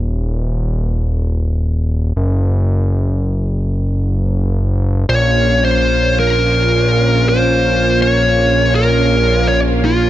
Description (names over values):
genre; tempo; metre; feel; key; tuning
synthwave; 82 BPM; 4/4; straight; Bb minor; A4 = 441 Hz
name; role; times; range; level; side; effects
fat analog bass; bass; 0.0-10.1 s; Eb1 to Bb1; -15 LUFS; equal; none
fuzz lead guitar; melody; 5.1-10.1 s; F4 to Db5; -14 LUFS; equal; distortion, tape echo
lush unison pad; sustained chords; 5.1-10.1 s; Bb3 to F4; -18 LUFS; right 1 dB; chorus, vintage 12-bit sampler grit
room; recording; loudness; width
light reverb; none; -12 LUFS; side -13 dB against mid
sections
0.0-10.1 A section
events
none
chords
0.0 N.C.; 5.1 Bbm